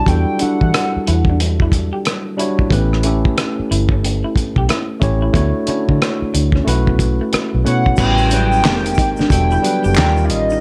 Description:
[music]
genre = R&B, neo-soul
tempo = 91 BPM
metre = 4/4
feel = swing 64% on 16ths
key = E dorian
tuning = A4 = 439 Hz
[part]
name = hollow square lead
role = melody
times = 0.0-1.4, 7.7-10.6 s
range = D5 to G5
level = -22 LUFS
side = equal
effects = chorus, slapback echo
[part]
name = electric guitar through a small old amp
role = second line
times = 0.0-10.6 s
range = A3 to G4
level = -27 LUFS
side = equal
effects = none
[part]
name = tine electric piano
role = accompaniment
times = 0.0-10.6 s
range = F#3 to D5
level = -22 LUFS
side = equal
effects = none
[part]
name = vintage muted fingered electric bass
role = bass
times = 0.1-10.6 s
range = E1 to E3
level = -20 LUFS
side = equal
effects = none
[part]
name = cloth-damped thuddy drum kit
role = drums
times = 0.1-10.5 s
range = crash cymbal, handclaps, hi-hat, kick drum, rim click, snare drum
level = -20 LUFS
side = equal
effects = none
[part]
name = chorused pulse-width pad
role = sustained chords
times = 8.0-10.6 s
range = C#3 to G4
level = -31 LUFS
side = equal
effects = none
[part]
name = tube shaker and finger snaps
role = percussion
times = 8.0-10.6 s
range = none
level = -34 LUFS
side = equal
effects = none
[sound]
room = light reverb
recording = dark, warm production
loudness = -16 LUFS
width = mono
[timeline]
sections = 0.0-8.0 A section; 8.0-10.6 B section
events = none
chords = 0.0 Em9; 2.7 A9; 5.3 Dmaj7; 6.7 B9sus4; 8.0 A13; 8.6 Fm11; 9.3 Em11; 10.0 D#9

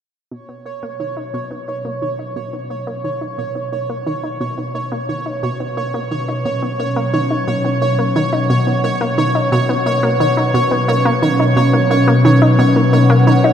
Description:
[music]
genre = ambient, sequencer-driven space music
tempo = 88 BPM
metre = 4/4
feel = straight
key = B major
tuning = A4 = 441 Hz
[part]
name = phased analog pad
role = sustained chords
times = 1.0-13.5 s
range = B2 to F#5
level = -17 LUFS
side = left 1 dB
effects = phaser, chorus
[part]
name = analog pluck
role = riff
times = 0.3-13.5 s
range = B2 to D#4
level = -20 LUFS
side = equal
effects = chorus, analog delay
[part]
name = pulsing gated texture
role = texture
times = 0.3-13.5 s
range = C#5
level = -20 LUFS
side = right 1 dB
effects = chorus, built-in reverb
[sound]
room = wet cathedral reverb, RT60 5.7 s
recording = in a vast, echoing space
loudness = -14 LUFS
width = side -9 dB against mid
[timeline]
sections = 0.3-13.5 A section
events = fade-in on synth arpeggio sound 0.3-13.5; fade-in on analog synth pad 0.3-13.5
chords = 0.3 Bsus2

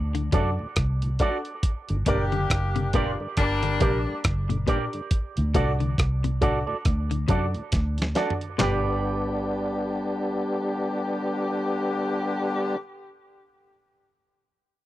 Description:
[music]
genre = roots reggae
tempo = 69 BPM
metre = 4/4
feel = swing 59% on 16ths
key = unclear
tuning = A4 = 440 Hz
[part]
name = vintage muted fingered electric bass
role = bass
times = 0.0-12.8 s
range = F#1 to F#2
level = -26 LUFS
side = equal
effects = none
[part]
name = semi-hollow electric guitar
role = arpeggios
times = 0.1-8.8 s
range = A2 to D3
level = -30 LUFS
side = left 5 dB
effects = none
[part]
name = dusty soul sampler-style drum kit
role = drums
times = 0.1-8.8 s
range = handclaps, hi-hat, kick drum, rim click, snare drum, toms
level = -25 LUFS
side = equal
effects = none
[part]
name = tonewheel organ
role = accompaniment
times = 0.2-12.8 s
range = D2 to D4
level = -29 LUFS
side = left 1 dB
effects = overdrive, chorus vibrato
[part]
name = electric guitar with an envelope filter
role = accompaniment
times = 0.3-12.8 s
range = F#4 to D5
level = -32 LUFS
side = right 6 dB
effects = spring reverb, tape echo
[part]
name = warm upright piano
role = stabs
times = 0.3-12.8 s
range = D4 to D5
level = -30 LUFS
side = left 2 dB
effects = none
[part]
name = mellow horn section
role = second line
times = 2.1-12.8 s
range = D3 to G4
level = -30 LUFS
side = left 2 dB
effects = tape echo
[sound]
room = little or no reverb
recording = dry, close 1970s-style studio recording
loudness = -23 LUFS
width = side -15 dB against mid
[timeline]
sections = 0.0-8.6 A section; 8.6-12.1 B section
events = drum fill 7.7-8.6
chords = 0.0 D; 1.6 Gm; 5.1 D; 8.6 G

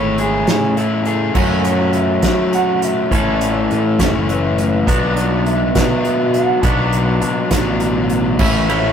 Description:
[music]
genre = indie rock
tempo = 68 BPM (dotted quarters)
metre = 6/8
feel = straight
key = A major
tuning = A4 = 437 Hz
[part]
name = electric guitar through a small old amp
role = melody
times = 0.0-8.9 s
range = A3 to A5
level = -23 LUFS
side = right 4 dB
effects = spring reverb
[part]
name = biting overdriven guitar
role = riff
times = 0.0-8.9 s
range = F#2 to A4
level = -26 LUFS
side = right 6 dB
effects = none
[part]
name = crunchy overdriven guitar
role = riff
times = 0.0-8.9 s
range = A2 to C#5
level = -17 LUFS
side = left 3 dB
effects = none
[part]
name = modern bright fingered electric bass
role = bass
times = 0.0-8.9 s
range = F#1 to F#3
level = -20 LUFS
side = right 1 dB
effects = none
[part]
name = unplugged drum kit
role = drums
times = 0.2-8.8 s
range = crash cymbal, hi-hat, kick drum, ride cymbal, snare drum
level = -19 LUFS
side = right 1 dB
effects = none
[part]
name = combo organ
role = sustained chords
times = 8.4-8.9 s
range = A4 to C#6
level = -26 LUFS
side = right 2 dB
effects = none
[sound]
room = light reverb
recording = rough rehearsal-room recording, tube saturation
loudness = -14 LUFS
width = side -8 dB against mid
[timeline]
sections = 0.0-1.4 A section; 1.4-8.4 B section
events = none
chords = 0.0 Amaj7; 1.4 F#m; 3.1 A; 4.9 Bm7; 8.4 A

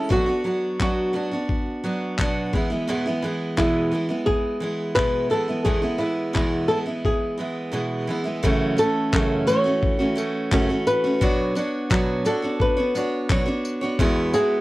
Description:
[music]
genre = acoustic pop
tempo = 86 BPM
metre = 4/4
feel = straight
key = unclear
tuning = A4 = 441 Hz
[part]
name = flamenco guitar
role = melody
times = 0.0-14.6 s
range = E4 to C#5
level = -24 LUFS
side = equal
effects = none
[part]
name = picked steel-string acoustic guitar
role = accompaniment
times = 0.0-14.6 s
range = E2 to C#5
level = -23 LUFS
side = right 1 dB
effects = none
[part]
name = breakbeat sampler-style drum kit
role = drums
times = 0.1-14.5 s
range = handclaps, kick drum, tambourine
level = -24 LUFS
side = left 1 dB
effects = none
[sound]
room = light reverb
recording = worn, warbling old tape, cassette tape, warbly pitch drift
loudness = -20 LUFS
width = side -18 dB against mid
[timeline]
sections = 0.0-8.4 A section; 8.4-14.6 B section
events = none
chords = 0.1 Bm; 2.5 E; 8.4 F#m7; 11.2 Bmadd9; 14.0 Eadd9

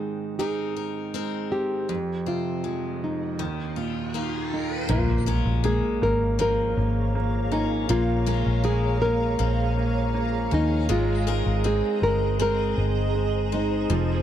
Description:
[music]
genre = pop ballad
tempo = 80 BPM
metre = 4/4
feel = straight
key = unclear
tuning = A4 = 439 Hz
[part]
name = nylon-string guitar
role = melody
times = 0.0-14.2 s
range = Eb4 to Bb4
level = -28 LUFS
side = left 1 dB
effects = none
[part]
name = clear grand piano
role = accompaniment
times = 0.0-14.2 s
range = Eb2 to Eb4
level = -29 LUFS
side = right 4 dB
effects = none
[part]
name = picked steel-string acoustic guitar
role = arpeggios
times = 0.0-14.2 s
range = F2 to Bb4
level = -32 LUFS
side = left 13 dB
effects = none
[part]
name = riser and impact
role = sound effects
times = 2.8-7.9 s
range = none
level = -34 LUFS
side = equal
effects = none
[part]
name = granular cloud pad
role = sustained chords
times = 6.0-14.2 s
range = Ab4 to C6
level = -32 LUFS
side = right 2 dB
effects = built-in reverb
[part]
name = vintage muted fingered electric bass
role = bass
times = 4.9-14.2 s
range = F1 to Eb2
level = -25 LUFS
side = equal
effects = none
[sound]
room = small room ambience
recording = dry, close 1970s-style studio recording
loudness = -22 LUFS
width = side -10 dB against mid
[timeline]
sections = 0.0-4.9 A section; 4.9-14.2 B section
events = riser 2.8-4.9; impact 4.9-7.9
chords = 0.0 Abadd9; 1.9 Fm; 3.4 Ebsus2; 4.9 Bbm7; 10.9 Abadd9

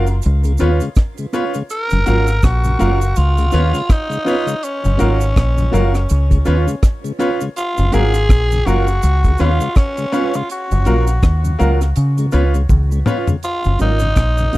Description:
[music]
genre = roots reggae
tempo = 82 BPM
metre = 4/4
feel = swing 59% on 16ths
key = F# major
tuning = A4 = 442 Hz
[part]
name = raspy tenor saxophone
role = melody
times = 0.0-14.6 s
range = C#4 to A#4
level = -22 LUFS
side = equal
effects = tape echo
[part]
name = mellow electric guitar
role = accompaniment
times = 0.0-14.6 s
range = C#4 to B4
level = -24 LUFS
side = right 5 dB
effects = tape echo
[part]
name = bright grand piano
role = stabs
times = 0.0-13.3 s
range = E#4 to E#5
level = -24 LUFS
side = left 4 dB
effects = none
[part]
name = deep dub fingered electric bass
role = bass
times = 0.0-14.6 s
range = F#1 to C#3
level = -14 LUFS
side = equal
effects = none
[part]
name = deep reggae drum kit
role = drums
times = 0.1-14.6 s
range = hi-hat, kick drum, rim click, toms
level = -14 LUFS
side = equal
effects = none
[part]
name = cabasa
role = percussion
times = 0.1-14.6 s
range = none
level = -38 LUFS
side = right 11 dB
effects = none
[part]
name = mellow tonewheel organ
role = accompaniment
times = 0.4-14.6 s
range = F#2 to E#4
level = -21 LUFS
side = left 3 dB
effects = slow rotary speaker
[sound]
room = little or no reverb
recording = dry, close 1970s-style studio recording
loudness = -13 LUFS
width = side -17 dB against mid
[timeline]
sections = 0.0-13.4 A section; 13.4-14.6 B section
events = drum fill 12.7-13.4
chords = 0.2 C#7; 1.7 F#maj7; 3.2 C#7; 4.6 F#maj7; 6.1 C#7; 7.6 F#maj7; 9.0 C#7; 10.5 F#maj7; 12.0 C#7; 13.4 F#maj7

